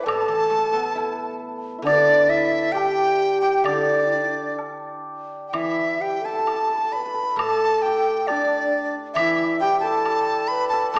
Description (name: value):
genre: chinese traditional, Chinese chamber ensemble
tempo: 67 BPM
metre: 2/4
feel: rubato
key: D zhi mode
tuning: A4 = 440 Hz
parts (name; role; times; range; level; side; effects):
- breathy bright large dizi; melody; 0.0-11.0 s; D5 to B5; -24 LUFS; equal; none
- breathy bright low xiao; second line; 0.0-11.0 s; D4 to B5; -28 LUFS; equal; none
- hammered dulcimer; second line; 0.0-11.0 s; D4 to B4; -30 LUFS; equal; none
- guzheng; accompaniment; 0.0-11.0 s; A2 to E4; -32 LUFS; equal; none
- woodblock; percussion; 0.1-11.0 s; none; -34 LUFS; equal; none
room: wet scoring stage reverb, RT60 1.6 s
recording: recorded in a church or concert hall, small speaker sound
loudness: -21 LUFS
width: mono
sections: 0.0-5.6 A section; 5.6-11.0 B section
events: none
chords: none